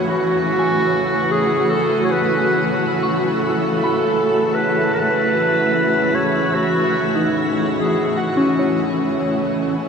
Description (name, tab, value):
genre	ambient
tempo	74 BPM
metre	4/4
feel	straight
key	unclear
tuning	A4 = 440 Hz
part	granular cloud pad	sustained chords	0.0-9.9 s	E3 to C#5	-21 LUFS	equal	built-in reverb
part	soft synth bell	arpeggios	0.0-9.9 s	C#4 to C#6	-26 LUFS	left 3 dB	chorus, ping-pong delay
part	overtone-sweeping drone	drone	0.0-9.9 s	C#3 to C#4	-27 LUFS	equal	chorus, built-in reverb
part	wind-like tuned noise texture	texture	0.0-9.9 s	E4 to E6	-27 LUFS	right 3 dB	built-in reverb
part	warm clarinet	melody	0.1-9.0 s	F#4 to C#5	-19 LUFS	equal	ping-pong delay
room	wet shimmer reverb, RT60 7.4 s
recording	cassette tape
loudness	-16 LUFS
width	side -6 dB against mid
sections	0.0-9.8 A section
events	none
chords	0.0 B9sus4